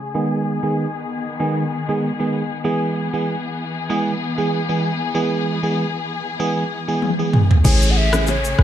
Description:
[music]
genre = afrobeats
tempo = 96 BPM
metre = 4/4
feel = swing 55% on 16ths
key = E major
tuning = A4 = 436 Hz
[part]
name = dark studio string section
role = sustained chords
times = 0.0-8.6 s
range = C#3 to G#4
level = -25 LUFS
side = left 4 dB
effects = low-pass filter
[part]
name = FM electric piano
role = accompaniment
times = 0.1-8.4 s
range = D#3 to G#4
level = -21 LUFS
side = right 3 dB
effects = chorus, low-pass filter
[part]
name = deep house drum kit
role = drums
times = 7.0-8.6 s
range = crash cymbal, rim click, shaker, toms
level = -18 LUFS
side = equal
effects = overdrive
[part]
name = short 808-style bass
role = bass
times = 7.6-8.6 s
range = F#1 to A1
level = -16 LUFS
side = equal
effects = none
[part]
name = downlifter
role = sound effects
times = 7.6-8.6 s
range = none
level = -24 LUFS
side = left 1 dB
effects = none
[part]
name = mellow hollow jazz flute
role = melody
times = 7.7-8.6 s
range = C#5 to F#5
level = -24 LUFS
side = left 1 dB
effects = digital delay
[part]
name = congas and bongos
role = percussion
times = 7.7-8.4 s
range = none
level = -25 LUFS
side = left 3 dB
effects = none
[sound]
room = digital ambience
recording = none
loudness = -18 LUFS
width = side -11 dB against mid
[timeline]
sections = 0.0-7.6 A section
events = filter sweep 0.0-7.6; drum fill 7.0-7.6; kick muted 7.6-8.6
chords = 0.1 G#m; 2.6 E; 7.6 Amaj7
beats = | 0.15 0.77 1.40 2.02 | 2.65 3.27 3.90 4.52 | 5.15 5.77 6.40 7.02 | 7.65 8.27

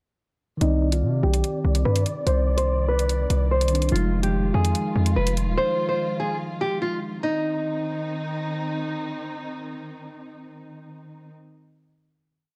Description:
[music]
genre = hip hop, drill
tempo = 145 BPM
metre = 4/4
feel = half-time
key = C harmonic minor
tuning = A4 = 440 Hz
[part]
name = nylon-string guitar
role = melody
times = 0.6-8.4 s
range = Eb4 to C5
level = -28 LUFS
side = equal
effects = low-pass filter
[part]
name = mellow tine electric piano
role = accompaniment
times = 0.6-7.2 s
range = Eb3 to D5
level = -32 LUFS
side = equal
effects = low-pass filter
[part]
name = dark symphonic string section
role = sustained chords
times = 0.6-11.3 s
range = C3 to D5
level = -34 LUFS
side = equal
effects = low-pass filter
[part]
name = hard-hitting 808-style bass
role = bass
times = 0.6-5.6 s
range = Eb1 to C3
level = -24 LUFS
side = equal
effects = none
[part]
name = electronic hi-hat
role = drums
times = 0.6-5.5 s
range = none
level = -34 LUFS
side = equal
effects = none
[sound]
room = light reverb, small room ambience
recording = dark, warm production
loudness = -24 LUFS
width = mono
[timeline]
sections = 0.6-7.2 breakdown; 7.2-10.5 final chord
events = filter sweep 0.6-7.2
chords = 0.6 Cmadd9; 3.9 Fm7; 7.2 Cm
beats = | 0.61 1.02 1.44 1.85 | 2.27 2.68 3.09 3.51 | 3.92 4.34 4.75 5.16 | 5.58 5.99 6.41 6.82 | 7.23 7.65 8.06 8.47 | 8.89 9.30 9.71 10.13

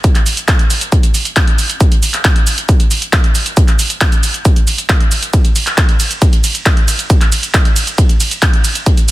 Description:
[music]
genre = trance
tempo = 136 BPM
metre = 4/4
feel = straight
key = none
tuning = none
[part]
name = electronic kick drum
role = drums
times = 0.0-9.0 s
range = none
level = -10 LUFS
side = equal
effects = none
[part]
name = punchy analog drum machine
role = drums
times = 0.0-9.1 s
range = handclaps, hi-hat, ride cymbal, shaker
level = -16 LUFS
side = right 1 dB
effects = sidechain pumping on hats, sidechain pumping on perc, sidechain pumping on cymbals
[sound]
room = little or no reverb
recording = dense, heavily limited modern master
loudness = -10 LUFS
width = side -17 dB against mid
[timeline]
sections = 0.0-9.1 A section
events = none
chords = none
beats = | 0.04 0.48 0.92 1.36 | 1.81 2.25 2.69 3.13 | 3.57 4.01 4.45 4.89 | 5.33 5.78 6.22 6.66 | 7.10 7.54 7.98 8.42 | 8.87

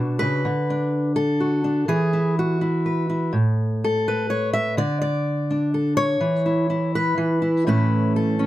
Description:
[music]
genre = folk, solo fingerstyle acoustic guitar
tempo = 125 BPM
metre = 3/4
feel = rubato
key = unclear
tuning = A4 = 440 Hz
[part]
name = fingerpicked steel-string acoustic guitar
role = solo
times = 0.0-8.5 s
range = A2 to E5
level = -19 LUFS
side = equal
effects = none
[sound]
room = light reverb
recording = close, detailed microphones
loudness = -19 LUFS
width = side -14 dB against mid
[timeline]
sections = 0.0-8.5 A section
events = none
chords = 0.4 D; 1.9 E; 3.3 N.C.; 4.8 D5; 6.2 N.C.; 7.7 A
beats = | 0.45 0.93 1.40 | 1.88 2.36 2.84 | 3.33 3.83 4.31 | 4.78 5.26 5.74 | 6.21 6.69 7.17 | 7.66 8.14

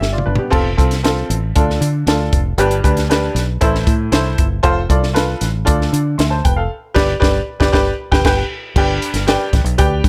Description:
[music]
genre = uptempo 1960s-style soul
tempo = 117 BPM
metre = 4/4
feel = straight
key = unclear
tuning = A4 = 439 Hz
[part]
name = bright upright piano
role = accompaniment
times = 0.0-10.1 s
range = G2 to C6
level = -21 LUFS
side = equal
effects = plate reverb
[part]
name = fingered electric bass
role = bass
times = 0.0-10.1 s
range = F1 to D3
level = -21 LUFS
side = equal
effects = none
[part]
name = compact cocktail drum kit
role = drums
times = 0.0-10.1 s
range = crash cymbal, hi-hat, kick drum, snare drum, toms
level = -19 LUFS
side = equal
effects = none
[sound]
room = light reverb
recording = none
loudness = -16 LUFS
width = mono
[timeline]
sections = 0.5-8.8 A section; 8.8-10.1 B section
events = drum fill 0.0-0.5; band accent 6.7-8.8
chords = 0.0 G; 0.5 F; 1.6 Dm; 2.6 G; 3.6 Am; 4.6 F; 5.7 Dm; 6.7 G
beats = 0.01 | 0.52 1.04 1.55 2.07 | 2.58 3.10 3.62 4.13 | 4.64 5.16 5.67 6.19 | 6.70 7.21 7.73 8.24 | 8.76 9.27 9.78

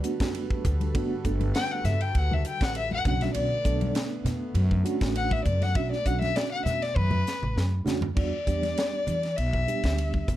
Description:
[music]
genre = electric jazz fusion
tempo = 100 BPM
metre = 4/4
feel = straight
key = B minor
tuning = A4 = 440 Hz
[part]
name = reed electric piano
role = accompaniment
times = 0.0-10.3 s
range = G3 to A4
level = -32 LUFS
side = right 4 dB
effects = fast tremolo
[part]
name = warm analog pad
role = sustained chords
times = 0.0-8.1 s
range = D3 to B4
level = -38 LUFS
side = left 1 dB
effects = chorus
[part]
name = crisp fusion drum kit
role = drums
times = 0.0-10.4 s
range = crash cymbal, hi-hat, kick drum, ride cymbal, snare drum, toms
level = -31 LUFS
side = equal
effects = none
[part]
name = upright bass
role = bass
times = 0.2-10.4 s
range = F#1 to E3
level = -28 LUFS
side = equal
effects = none
[part]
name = congas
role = percussion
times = 0.6-10.4 s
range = none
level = -34 LUFS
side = left 1 dB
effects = none
[part]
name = warm violin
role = melody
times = 1.6-10.3 s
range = B4 to G5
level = -30 LUFS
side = left 3 dB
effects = none
[sound]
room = light reverb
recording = dark, warm production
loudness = -24 LUFS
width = side -14 dB against mid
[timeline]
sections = 0.0-8.2 A section; 8.2-10.4 B section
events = violin solo 0.0-8.2; drum fill 7.0-8.2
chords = 0.0 Gmaj9; 3.1 Bm9; 8.2 Em7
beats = 0.35 | 0.95 1.55 2.15 2.75 | 3.35 3.95 4.55 5.16 | 5.76 6.36 6.96 7.56 | 8.17 8.77 9.37 9.97

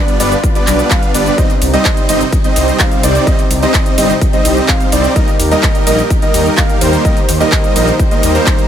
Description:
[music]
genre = EDM, festival progressive house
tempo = 127 BPM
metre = 4/4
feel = straight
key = C minor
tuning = A4 = 440 Hz
[part]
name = lush unison pad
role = sustained chords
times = 0.0-8.7 s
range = C3 to C5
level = -20 LUFS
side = equal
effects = chorus, sidechain pumping
[part]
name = dark concert grand piano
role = arpeggios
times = 0.0-8.7 s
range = C5 to F5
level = -19 LUFS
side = right 1 dB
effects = sidechain pumping, digital delay
[part]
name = supersaw chords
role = riff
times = 0.0-8.7 s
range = G3 to F5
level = -15 LUFS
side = right 1 dB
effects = sidechain pumping, digital delay
[part]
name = big-room dance drum kit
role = drums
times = 0.1-8.7 s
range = handclaps, hi-hat, ride cymbal, shaker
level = -19 LUFS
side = equal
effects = none
[part]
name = wide detuned saw bass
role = bass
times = 0.2-8.4 s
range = G1 to Eb2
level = -16 LUFS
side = left 1 dB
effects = chorus, sidechain pumping
[part]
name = electronic kick drum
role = drums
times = 0.4-8.6 s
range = none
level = -13 LUFS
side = equal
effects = none
[sound]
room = little or no reverb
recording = none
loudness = -9 LUFS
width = side -9 dB against mid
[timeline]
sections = 0.0-8.7 A section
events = none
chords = 0.0 G; 1.4 Cm; 5.2 Eb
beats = 0.43 0.91 | 1.38 1.85 2.33 2.80 | 3.27 3.74 4.21 4.69 | 5.16 5.63 6.10 6.58 | 7.05 7.52 7.99 8.47

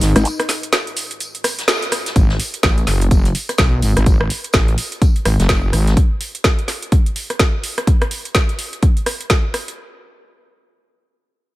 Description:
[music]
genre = bass house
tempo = 126 BPM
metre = 4/4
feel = swing 60% on 16ths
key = G# phrygian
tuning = A4 = 442 Hz
[part]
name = dark analog pad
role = sustained chords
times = 0.0-2.1 s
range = G#3 to D#5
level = -28 LUFS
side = left 2 dB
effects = chorus, sidechain pumping
[part]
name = wobble bass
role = bass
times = 0.0-6.0 s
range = F#1 to B1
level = -16 LUFS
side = equal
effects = chorus, overdrive, sidechain pumping
[part]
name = garage drum kit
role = drums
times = 0.0-9.8 s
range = hi-hat, rim click, shaker, snare drum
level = -19 LUFS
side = equal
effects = overdrive
[part]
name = vintage brush drum kit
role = drums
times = 0.0-6.0 s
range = hi-hat, snare drum, tambourine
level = -30 LUFS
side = left 1 dB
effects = sidechain pumping on hats, high-pass filter on hats, high-pass filter on snare, sidechain pumping on perc, high-pass filter on perc, high-pass filter on room
[part]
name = electronic kick drum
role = drums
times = 2.2-9.4 s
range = none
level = -15 LUFS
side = equal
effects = none
[sound]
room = studio reverb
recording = none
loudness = -14 LUFS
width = side -18 dB against mid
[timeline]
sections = 0.0-2.2 A section; 2.2-9.8 B section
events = drop 0.0-2.2; break 0.3-2.2; band accent 1.7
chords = 0.0 G#5; 2.2 N.C.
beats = | 0.25 0.73 1.21 1.68 | 2.16 2.63 3.11 3.59 | 4.06 4.54 5.01 5.49 | 5.97 6.44 6.92 7.40 | 7.87 8.35 8.82 9.30

